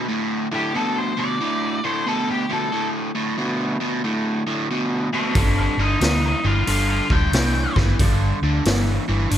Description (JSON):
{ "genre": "blues rock power trio and southern rock", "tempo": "91 BPM", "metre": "4/4", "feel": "swing 65% on 8ths", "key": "D minor", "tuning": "A4 = 440 Hz", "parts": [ { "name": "overdriven electric guitar", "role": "riff", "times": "0.0-9.4 s", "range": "D2 to E3", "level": "-22 LUFS", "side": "right 1 dB", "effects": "none" }, { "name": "octave-fuzz lead guitar", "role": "melody", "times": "0.5-7.8 s", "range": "G4 to A5", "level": "-24 LUFS", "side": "left 2 dB", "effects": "distortion, digital delay" }, { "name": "vintage muted fingered electric bass", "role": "bass", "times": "5.4-9.4 s", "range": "D1 to D2", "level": "-21 LUFS", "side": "equal", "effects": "none" }, { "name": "raw garage drum kit", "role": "drums", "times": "5.4-9.4 s", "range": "hi-hat, kick drum, snare drum", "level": "-22 LUFS", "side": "equal", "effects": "none" } ], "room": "light reverb", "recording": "none", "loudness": "-18 LUFS", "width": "side -10 dB against mid", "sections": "0.0-9.4 A section", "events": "none", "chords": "0.0 D5; 5.4 Gsus2", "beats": "| 0.08 0.74 1.40 2.06 | 2.72 3.38 4.04 4.70 | 5.35 6.01 6.67 7.33 | 7.99 8.65 9.31" }